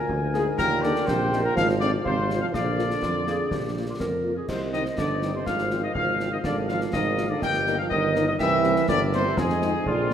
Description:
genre	military-style march for wind band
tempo	123 BPM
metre	2/4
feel	straight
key	unclear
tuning	A4 = 440 Hz
part	warm trumpet section	melody	0.0-10.1 s	F4 to G5	-27 LUFS	left 2 dB	none
part	mellow euphonium	second line	0.0-10.1 s	F2 to G3	-29 LUFS	right 4 dB	none
part	mellow woodwind section	second line	0.0-10.1 s	F4 to Ab5	-30 LUFS	equal	none
part	mellow tuba	bass	0.1-10.1 s	G1 to F2	-28 LUFS	right 2 dB	none
part	concert bass drum, concert snare drum and clash cymbals	drums	0.1-10.1 s	none	-33 LUFS	equal	none
part	mellow French horn section	accompaniment	0.3-10.1 s	F3 to Ab4	-33 LUFS	left 3 dB	none
room	wet scoring stage reverb, RT60 1.9 s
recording	none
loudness	-22 LUFS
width	side -9 dB against mid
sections	0.0-10.1 A section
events	none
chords	0.0 Bb7/D; 0.6 Eb; 1.6 Fm/Ab; 2.5 Bb; 4.5 Cm; 5.5 Fm/Ab; 6.4 Bb5/Ab; 7.4 Eb/G; 8.4 C7; 9.4 Fm7

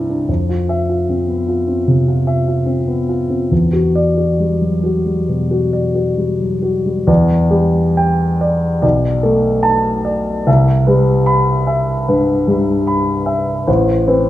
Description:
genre	classical, impressionist solo piano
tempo	65-77 BPM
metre	4/4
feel	rubato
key	unclear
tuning	A4 = 445 Hz
part	warm grand piano	solo	0.0-14.3 s	A1 to A6	-13 LUFS	equal	none
room	wet recital hall reverb, RT60 1.7 s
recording	minimal, uncompressed stereo recording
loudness	-13 LUFS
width	side -14 dB against mid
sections	0.0-7.1 A section; 7.1-14.3 B section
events	none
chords	0.3 F5; 3.5 Em9; 7.1 Em7; 8.8 Bm7; 10.5 Cmaj7; 13.7 Amadd9

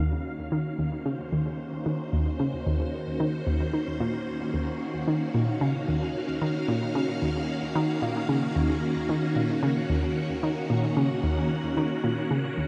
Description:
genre	ambient, sequencer-driven space music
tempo	112 BPM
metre	4/4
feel	straight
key	Eb dorian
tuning	A4 = 440 Hz
part	phased string machine	sustained chords	0.0-12.7 s	Eb3 to Gb5	-31 LUFS	equal	ensemble chorus, phaser, shimmer reverb
part	analog pluck	riff	0.0-12.7 s	Eb2 to Eb3	-30 LUFS	equal	chorus, cassette tape, tape echo
room	wet huge ambient reverb, RT60 8.7 s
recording	dark, warm production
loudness	-27 LUFS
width	mono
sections	0.0-12.7 A section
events	none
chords	0.0 Ebm7

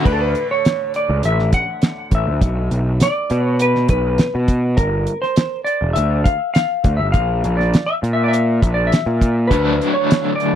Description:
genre	psychedelic rock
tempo	102 BPM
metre	4/4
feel	straight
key	unclear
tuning	A4 = 440 Hz
part	crunchy overdriven guitar	riff	0.0-0.1, 9.5-10.6 s	D3 to D4	-18 LUFS	left 2 dB	tremolo
part	tanpura	drone	0.0-7.0 s	D2 to D3	-36 LUFS	right 1 dB	none
part	clean lap steel guitar	melody	0.1-10.6 s	A4 to F#5	-20 LUFS	left 1 dB	tape echo
part	fuzz picked electric bass	bass	0.1-9.8 s	E1 to B2	-18 LUFS	equal	overdrive
part	damped 70s drum kit	drums	0.1-10.5 s	crash cymbal, hi-hat, kick drum, snare drum	-16 LUFS	right 1 dB	none
room	little or no reverb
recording	dry, close 1970s-style studio recording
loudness	-15 LUFS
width	side -10 dB against mid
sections	0.1-10.6 A section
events	none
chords	0.1 D; 2.4 Bm; 4.8 G5; 7.1 Bb; 9.5 D

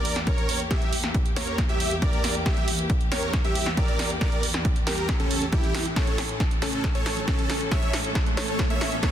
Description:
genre	uplifting trance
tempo	137 BPM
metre	4/4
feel	straight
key	unclear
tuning	A4 = 439 Hz
part	dense compressed supersaw	melody	0.0-9.1 s	C#4 to E5	-29 LUFS	right 1 dB	sidechain pumping, ping-pong delay
part	muted studio string section	sustained chords	0.0-9.1 s	E2 to A4	-33 LUFS	left 1 dB	sidechain pumping
part	punchy analog drum machine	drums	0.1-9.1 s	hi-hat, snare drum	-30 LUFS	right 1 dB	high-pass filter on snare, sidechain pumping on hats, high-pass filter on hats, high-pass filter on room
part	electronic kick drum	drums	0.3-9.1 s	none	-25 LUFS	equal	none
part	riser	sound effects	6.8-9.1 s	none	-36 LUFS	right 1 dB	none
room	light reverb, digital ambience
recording	dense, heavily limited modern master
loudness	-22 LUFS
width	side -10 dB against mid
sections	0.0-9.1 A section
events	build-up 0.0-9.1; drum fill 0.0-9.1; riser 6.8-9.1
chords	0.0 Edim; 6.0 A

